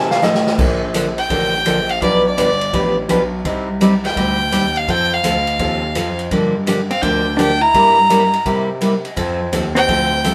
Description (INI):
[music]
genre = country, western swing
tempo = 168 BPM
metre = 4/4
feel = swing 66% on 8ths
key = Bb major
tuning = A4 = 440 Hz
[part]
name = clear fiddle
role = melody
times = 0.0-10.3 s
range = D5 to Bb5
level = -19 LUFS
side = equal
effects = none
[part]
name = clean lap steel guitar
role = second line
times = 0.0-0.5 s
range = Eb5 to F5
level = -20 LUFS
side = equal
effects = none
[part]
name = hollow-body jazz guitar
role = second line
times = 0.0-0.2, 6.9-10.3 s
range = C4 to E4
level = -24 LUFS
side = equal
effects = none
[part]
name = picked steel-string acoustic guitar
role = accompaniment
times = 0.0-10.3 s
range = B2 to B4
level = -20 LUFS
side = equal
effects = none
[part]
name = warm concert grand piano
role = bass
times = 0.0-10.3 s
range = G1 to C3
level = -24 LUFS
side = equal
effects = none
[part]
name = swinging big-band drum kit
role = drums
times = 0.1-10.3 s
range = crash cymbal, hi-hat, kick drum, ride cymbal, snare drum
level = -27 LUFS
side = equal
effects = none
[sound]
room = moderate studio reverb, RT60 0.6 s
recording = band playing live in one room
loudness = -16 LUFS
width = mono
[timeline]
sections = 0.6-10.3 A section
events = drum fill 0.0-0.6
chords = 0.0 F7; 0.6 Bbmaj7; 2.0 G7; 3.4 Cm; 4.9 F; 6.3 Gm7; 7.7 C7/G; 9.2 F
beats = 0.22 | 0.58 0.94 1.30 1.66 | 2.02 2.37 2.73 3.09 | 3.45 3.81 4.16 4.52 | 4.88 5.24 5.59 5.95 | 6.31 6.67 7.03 7.38 | 7.74 8.10 8.46 8.81 | 9.17 9.53 9.89 10.24